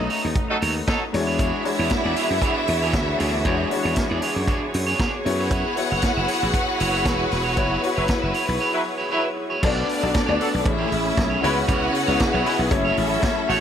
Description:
disco; 116 BPM; 4/4; straight; B dorian; A4 = 440 Hz
clear studio string section; second line; 0.0-13.6 s; D4 to F#5; -26 LUFS; equal
clear baby grand piano; accompaniment; 0.0-13.6 s; G#3 to D5; -27 LUFS; left 6 dB
electric guitar at the edge of break-up; accompaniment; 0.0-13.6 s; D4 to E5; -28 LUFS; right 5 dB
clear symphonic string section; sustained chords; 0.0-13.6 s; C#3 to C#5; -28 LUFS; right 1 dB
slap bass; bass; 0.0-13.6 s; E1 to F#2; -26 LUFS; equal
vintage drum kit; drums; 0.1-13.6 s; crash cymbal, hi-hat, kick drum, snare drum; -26 LUFS; equal
clear horn section; stabs; 0.5-1.0, 8.0-13.6 s; F#3 to C#5; -26 LUFS; equal
cowbell; percussion; 9.6-13.4 s; -35 LUFS; right 4 dB
light reverb; -19 LUFS; side -9 dB against mid
0.0-9.6 A section; 9.6-13.6 B section
band accent 0.0-1.4, 7.6-9.6
0.0 B9; 1.1 E13; 5.2 F#7sus4; 9.6 Bm7; 10.7 Amaj7; 11.4 C#m7; 12.7 F#m7
0.35 0.87 | 1.39 1.90 2.42 2.93 | 3.45 3.96 4.48 4.99 | 5.51 6.02 6.54 7.05 | 7.57 8.08 8.60 9.11 | 9.63 10.14 10.65 11.17 | 11.68 12.20 12.71 13.23

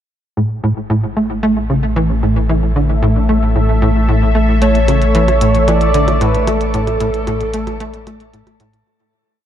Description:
ambient, sequencer-driven space music; 113 BPM; 4/4; straight; A major; A4 = 440 Hz
sweeping resonant pad; sustained chords; 0.4-8.9 s; A2 to E5; -20 LUFS; equal; chorus
tight sequencer bass; riff; 0.4-8.8 s; A2 to A3; -16 LUFS; right 1 dB; lush chorus, cassette tape, tape echo
warm sub bass; bass; 0.4-8.8 s; A1; -16 LUFS; equal
pulse-width lead; melody; 4.6-8.3 s; A4 to D5; -17 LUFS; equal; chorus, cassette tape, tape echo
electronic hi-hat and percussion blips; percussion; 4.6-8.8 s; -28 LUFS; right 5 dB; tape echo
moderate shimmer reverb, RT60 8.5 s; dark, warm production; -12 LUFS; side -10 dB against mid
0.4-8.9 A section
fade-in on analog synth pad 0.4-8.9; fade-out 6.0-8.9
0.4 A5
| 0.37 0.90 1.43 1.96 | 2.49 3.02 3.56 4.09 | 4.62 5.15 5.68 6.21 | 6.74 7.27 7.80 8.34

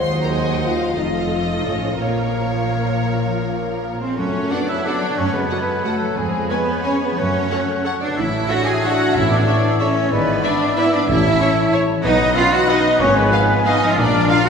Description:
classical, orchestral ballroom waltz; 158-202 BPM; 3/4; rubato; Bb minor, F# minor from 4.2 s; A4 = 440 Hz
rich studio violin section; melody; 0.0-14.4 s; Db5 to G#5; -30 LUFS; left 2 dB
mellow hollow silver concert flute; second line; 0.0-14.5 s; F5 to B5; -28 LUFS; left 2 dB
rich studio violin section; second line; 0.0-14.5 s; G#4 to C6; -28 LUFS; left 2 dB
warm clarinet; second line; 0.0-14.5 s; Bb4 to Eb5; -31 LUFS; equal
rich studio viola section; accompaniment; 0.0-14.4 s; F3 to F5; -28 LUFS; right 2 dB
mellow French horn section; sustained chords; 0.0-14.5 s; E#3 to Bb4; -25 LUFS; left 3 dB
concert harp; arpeggios; 0.0-14.5 s; F2 to B5; -26 LUFS; left 5 dB
rich studio cello section; bass; 0.0-14.5 s; Eb2 to G#4; -22 LUFS; right 2 dB
rich studio double bass section; bass; 0.0-14.2 s; F1 to F#2; -24 LUFS; right 2 dB
dark trumpet section; stabs; 4.0-14.5 s; G#4 to G#5; -24 LUFS; equal
warm oboe; second line; 4.2-14.5 s; E5 to G#5; -28 LUFS; right 1 dB
wet scoring stage reverb, RT60 2.0 s; heard from further back in the room; -16 LUFS; side -6 dB against mid
0.0-4.2 A section; 4.2-14.5 B section
0.0 Cdim/Eb; 1.0 F7; 2.0 Bbm; 4.2 F#m; 6.2 C#7/E#; 7.2 F#m; 8.2 A; 10.1 E7/G#; 11.1 A; 12.0 B; 13.0 Fdim/Ab; 14.0 Bb
0.31 0.65 | 0.96 1.29 1.64 | 2.00 2.36 2.74 | 3.09 3.45 3.83 | 4.17 4.51 4.85 | 5.17 5.50 5.84 | 6.17 6.50 6.85 | 7.18 7.51 7.85 | 8.17 8.49 8.83 | 9.14 9.46 9.80 | 10.11 10.43 10.77 | 11.08 11.40 11.73 | 12.04 12.36 12.70 | 13.01 13.32 13.66 | 13.97 14.29

